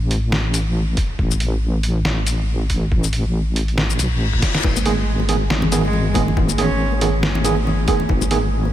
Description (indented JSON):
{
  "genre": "deep dubstep",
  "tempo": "139 BPM",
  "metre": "4/4",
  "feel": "swing 57% on 16ths, half-time",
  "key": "G# phrygian",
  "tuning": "A4 = 440 Hz",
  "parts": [
    { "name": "deep soft wobble bass", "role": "bass", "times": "0.0-8.7 s", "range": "G#1 to B1", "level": "-19 LUFS", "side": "equal", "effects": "chorus" },
    { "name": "trip hop sampler-style drum kit", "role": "drums", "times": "0.1-8.4 s", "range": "crash cymbal, hi-hat, shaker, snare drum", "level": "-24 LUFS", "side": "equal", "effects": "none" },
    { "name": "electronic kick drum", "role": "drums", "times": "1.0-8.2 s", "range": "none", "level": "-21 LUFS", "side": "equal", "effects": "none" },
    { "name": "reverse cymbal", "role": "sound effects", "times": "4.0-4.6 s", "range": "none", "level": "-30 LUFS", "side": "left 6 dB", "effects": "none" },
    { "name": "bongos and congas", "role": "percussion", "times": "4.6-8.7 s", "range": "none", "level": "-24 LUFS", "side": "left 2 dB", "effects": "dub echo" },
    { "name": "warm cello", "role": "melody", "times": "4.9-7.0 s", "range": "G#3 to C#4", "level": "-26 LUFS", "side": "equal", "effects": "dub echo" },
    { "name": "overdriven tine electric piano", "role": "stabs", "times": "4.9-8.4 s", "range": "D#3 to G#4", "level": "-22 LUFS", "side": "right 4 dB", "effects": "dub echo" }
  ],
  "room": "light reverb",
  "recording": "none",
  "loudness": "-16 LUFS",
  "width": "side -12 dB against mid",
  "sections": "0.0-8.7 A section",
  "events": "reverse cymbal 4.0-4.6; drum fill 4.4",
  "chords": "0.0 N.C.; 4.6 G#m",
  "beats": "0.33 0.76 | 1.19 1.62 2.05 2.48 | 2.92 3.35 3.78 4.21 | 4.64 5.07 5.50 5.94 | 6.37 6.80 7.23 7.66 | 8.10 8.53"
}